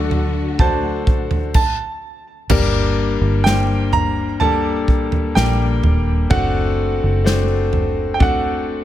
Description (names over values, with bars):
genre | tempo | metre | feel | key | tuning
pop ballad | 63 BPM | 4/4 | straight | G harmonic minor | A4 = 440 Hz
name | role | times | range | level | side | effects
clear concert grand piano | melody | 0.0-8.8 s | F#5 to Bb5 | -23 LUFS | right 5 dB | none
clear concert grand piano | accompaniment | 0.0-8.8 s | G2 to C5 | -20 LUFS | left 4 dB | none
warm symphonic string section | sustained chords | 0.0-1.5 s | D3 to F#4 | -27 LUFS | left 1 dB | none
vintage muted fingered electric bass | bass | 0.0-8.8 s | Eb1 to D2 | -20 LUFS | equal | none
natural country drum kit | drums | 0.1-8.4 s | crash cymbal, kick drum, snare drum, toms | -19 LUFS | right 1 dB | none
room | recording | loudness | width
studio reverb | none | -15 LUFS | side -12 dB against mid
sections
0.0-2.5 A section; 2.5-8.8 A section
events
stop 1.5-2.5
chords
0.0 D; 2.5 Gm; 6.3 D7/F#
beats
0.59 1.54 | 2.50 3.45 4.40 5.35 | 6.31 7.26 8.21